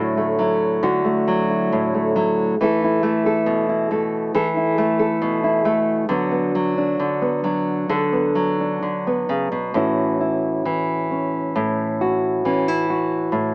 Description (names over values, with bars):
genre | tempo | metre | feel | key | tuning
folk, solo fingerstyle acoustic guitar | 68 BPM | 4/4 | rubato | A major | A4 = 439 Hz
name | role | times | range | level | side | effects
nylon-string guitar | solo | 0.0-13.5 s | A2 to A4 | -18 LUFS | equal | none
room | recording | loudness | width
light reverb | worn, warbling old tape, cassette tape, warbly pitch drift, small speaker sound | -18 LUFS | side -29 dB against mid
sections
0.0-9.7 A section; 9.7-13.5 B section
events
none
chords
0.0 Dadd9; 2.6 Esus4; 6.1 Bm/D; 9.7 A6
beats
0.83 1.72 | 2.59 3.46 4.33 5.21 | 6.09 6.98 7.89 8.83 | 9.75 10.65 11.55 12.44 | 13.31